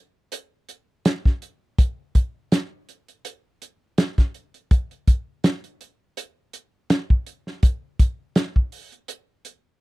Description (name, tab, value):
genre	blues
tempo	82 BPM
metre	4/4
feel	swing 55% on 16ths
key	none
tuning	none
part	warm soul drum kit	drums	0.3-9.6 s	hi-hat, kick drum, snare drum	-18 LUFS	equal	none
room	light reverb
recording	dry, close 1970s-style studio recording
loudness	-20 LUFS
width	side -21 dB against mid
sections	0.0-9.8 A section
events	none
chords	none